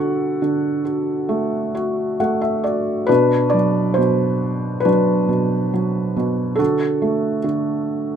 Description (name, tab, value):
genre	classical, lyrical solo piano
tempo	68 BPM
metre	4/4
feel	rubato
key	unclear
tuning	A4 = 440 Hz
part	felt-muted upright piano	solo	0.0-8.2 s	B2 to F#5	-17 LUFS	right 1 dB	none
room	light reverb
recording	close, detailed microphones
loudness	-17 LUFS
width	side -8 dB against mid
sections	0.0-3.1 A section; 3.1-8.2 B section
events	felt piano fill 1.7-3.1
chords	0.0 D; 3.1 Bm; 6.6 D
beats	0.42 1.30 2.20 | 3.09 3.98 4.85 5.73 | 6.60 7.45